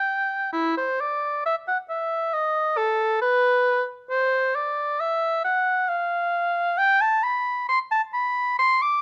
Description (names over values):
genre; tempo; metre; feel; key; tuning
classical, baroque-style fantasia for unaccompanied oboe; 67 BPM; 3/4; rubato; G major; A4 = 440 Hz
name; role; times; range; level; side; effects
warm oboe; solo; 0.0-9.0 s; E4 to D6; -23 LUFS; equal; none
room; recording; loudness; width
light reverb; dark, warm production; -23 LUFS; mono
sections
0.0-9.0 A section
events
none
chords
none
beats
| 0.53 1.46 2.34 | 3.23 4.11 5.00 | 5.89 6.79 7.70 | 8.60